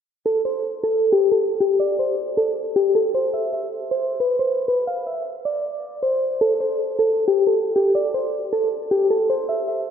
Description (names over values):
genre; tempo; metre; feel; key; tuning
hip hop; 156 BPM; 4/4; half-time; A minor; A4 = 441 Hz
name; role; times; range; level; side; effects
soft electric-piano-like synth keys; melody; 0.3-9.8 s; G4 to F5; -19 LUFS; equal; chorus, diffuse ambient delay
room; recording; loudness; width
wet lush hall reverb, RT60 3.4 s; dreamy mix soaked in reverb, low-pass filter; -19 LUFS; side -8 dB against mid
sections
0.3-9.9 A section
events
filter sweep 0.3-9.9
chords
none